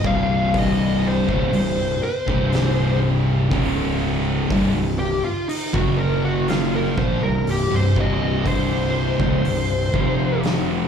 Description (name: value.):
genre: stoner and doom metal.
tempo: 61 BPM.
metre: 4/4.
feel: straight.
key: unclear.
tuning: A4 = 435 Hz.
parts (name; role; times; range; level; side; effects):
fuzz lead guitar; melody; 0.0-10.4 s; Eb4 to F5; -25 LUFS; left 1 dB; distortion, slapback echo, ping-pong delay.
sludgy distorted guitar; riff; 0.0-10.9 s; C2 to F#3; -28 LUFS; left 1 dB; overdrive.
thick fuzz guitar; riff; 0.0-10.9 s; C2 to F#3; -24 LUFS; left 7 dB; distortion.
thick fuzz guitar; riff; 0.0-10.9 s; C2 to F#3; -23 LUFS; right 6 dB; distortion.
fuzz fingered electric bass; bass; 0.0-10.9 s; C1 to Bb1; -27 LUFS; equal; overdrive.
oversized low-tuned drum kit; drums; 0.0-10.7 s; hi-hat, kick drum, snare drum; -26 LUFS; equal; none.
room: little or no reverb.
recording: live gig heard through the venue's PA, club reverb.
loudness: -18 LUFS.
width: side -7 dB against mid.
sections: 0.0-10.9 A section.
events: lead electric guitar solo 0.0-10.9.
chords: 0.0 C5; 3.5 Db5; 4.5 C5; 5.7 F#5; 7.0 C5; 9.9 F5.